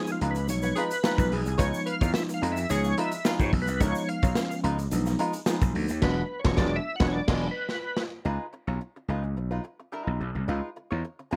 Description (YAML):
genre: funk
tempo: 108 BPM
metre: 4/4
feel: straight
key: Db mixolydian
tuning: A4 = 439 Hz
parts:
  - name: overdriven tonewheel organ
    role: melody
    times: 0.0-8.0 s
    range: F4 to F#5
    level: -34 LUFS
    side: equal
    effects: chorus vibrato, slow rotary speaker
  - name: bright tine electric piano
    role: stabs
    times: 0.0-7.5 s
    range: Fb3 to Eb4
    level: -35 LUFS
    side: equal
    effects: medium tremolo
  - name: archtop guitar, miked and amplified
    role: accompaniment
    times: 0.1-11.4 s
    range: Ab3 to Db5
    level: -36 LUFS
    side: equal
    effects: wah
  - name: crunchy breakbeat drum kit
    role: drums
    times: 0.1-8.1 s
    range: crash cymbal, hi-hat, kick drum, snare drum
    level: -30 LUFS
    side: equal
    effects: none
  - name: tube shaker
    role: percussion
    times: 0.1-6.0 s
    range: none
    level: -47 LUFS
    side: equal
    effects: none
  - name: gritty slap bass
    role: bass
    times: 0.2-11.4 s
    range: E1 to Ab2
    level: -31 LUFS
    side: equal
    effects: overdrive
  - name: breathy tenor saxophone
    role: second line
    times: 0.6-3.5 s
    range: F4 to Db5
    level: -36 LUFS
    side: equal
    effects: none
room: light reverb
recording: none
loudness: -28 LUFS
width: mono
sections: 0.0-8.3 A section; 8.3-11.4 B section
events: tonewheel organ solo 0.0-8.3; band accent 6.0-8.3; drum fill 7.7-8.3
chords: 0.0 Db9; 6.0 E9; 8.3 Db9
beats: 0.48 1.04 | 1.59 2.15 2.70 3.26 | 3.81 4.37 4.92 5.47 | 6.03 6.58 7.14 7.70 | 8.25 8.81 9.37 9.92 | 10.48 11.04